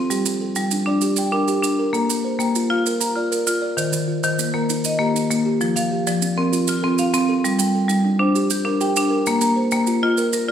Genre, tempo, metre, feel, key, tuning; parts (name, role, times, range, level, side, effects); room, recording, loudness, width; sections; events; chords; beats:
southern african traditional, mbira-style interlocking cycle; 131 BPM (dotted quarters); 12/8; straight; F mixolydian; A4 = 440 Hz
kalimba; arpeggios; 0.0-10.5 s; Eb3 to G5; -24 LUFS; right 3 dB
marimba with hard mallets; arpeggios; 0.0-10.5 s; Eb3 to Bb5; -19 LUFS; left 2 dB
maracas; percussion; 0.1-10.5 s; -27 LUFS; right 7 dB
wet recital hall reverb, RT60 1.4 s; recorded in a church or concert hall; -18 LUFS; side -9 dB against mid
0.0-5.6 A section; 5.6-10.5 B section
0.1 Gm; 1.9 Bb; 3.8 Eb; 5.6 F; 7.4 Gm; 9.3 Bb5
| 0.10 0.56 1.02 1.48 | 1.94 2.40 2.86 3.31 | 3.77 4.23 4.69 5.15 | 5.61 6.06 6.52 6.98 | 7.43 7.89 8.35 8.80 | 9.26 9.71 10.17